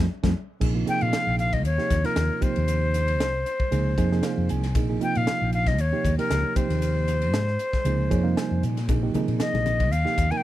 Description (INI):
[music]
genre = electric jazz fusion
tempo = 116 BPM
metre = 4/4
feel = swing 54% on 16ths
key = Bb dorian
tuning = A4 = 441 Hz
[part]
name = mellow reed electric piano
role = accompaniment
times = 0.0-10.4 s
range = C3 to Ab5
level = -28 LUFS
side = right 6 dB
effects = none
[part]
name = mellow fretless electric bass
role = bass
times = 0.0-10.3 s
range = Bb1 to Bb2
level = -24 LUFS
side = left 1 dB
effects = none
[part]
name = crisp fusion drum kit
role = drums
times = 0.2-10.4 s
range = crash cymbal, hi-hat, kick drum, ride cymbal, snare drum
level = -29 LUFS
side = equal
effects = none
[part]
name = congas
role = percussion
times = 0.2-0.4, 8.9-9.8 s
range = none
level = -30 LUFS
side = left 7 dB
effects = none
[part]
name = breathy bright concert flute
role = melody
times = 0.9-10.4 s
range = Bb4 to Ab5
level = -27 LUFS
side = left 2 dB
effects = none
[sound]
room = little or no reverb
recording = none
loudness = -21 LUFS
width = side -14 dB against mid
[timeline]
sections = 0.6-10.4 A section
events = reed electric piano fill 0.0-0.6, 3.7-4.8, 7.9-8.9; band accent 0.0-0.6; drum fill 0.1-0.6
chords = 0.0 F; 0.6 Bbsus2; 1.7 Eb9; 2.4 Cm7; 3.7 Dbmaj7; 4.8 Bbsus2; 5.8 Eb9; 6.6 Cm7; 7.9 Dbmaj7; 8.9 Bbsus2; 9.9 Ebadd9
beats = 0.10 | 0.62 1.14 1.65 2.17 | 2.69 3.20 3.72 4.24 | 4.75 5.27 5.79 6.30 | 6.82 7.34 7.86 8.37 | 8.89 9.40 9.92